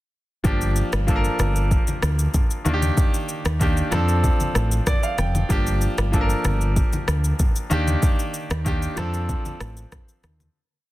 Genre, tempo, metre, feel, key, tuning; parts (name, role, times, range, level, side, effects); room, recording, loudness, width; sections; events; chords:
afrobeats; 95 BPM; 4/4; straight; G minor; A4 = 440 Hz
bright concert grand piano; accompaniment; 0.4-10.6 s; Eb3 to G5; -25 LUFS; right 1 dB
fingered electric bass; bass; 0.4-10.5 s; F1 to F2; -22 LUFS; equal
afro-pop drum kit; drums; 0.4-10.5 s; kick drum, rim click, shaker; -23 LUFS; equal; soft clipping on snare
congas; percussion; 0.5-10.5 s; -30 LUFS; left 1 dB
small room ambience; dense, heavily limited modern master; -19 LUFS; side -16 dB against mid
0.4-10.6 verse
grand piano fill 4.6-5.5; fade-out 8.0-10.6
0.4 Gm7; 2.7 Ebmaj7; 3.9 Dm7; 5.5 Gm7; 7.7 Ebmaj7; 9.0 Dm7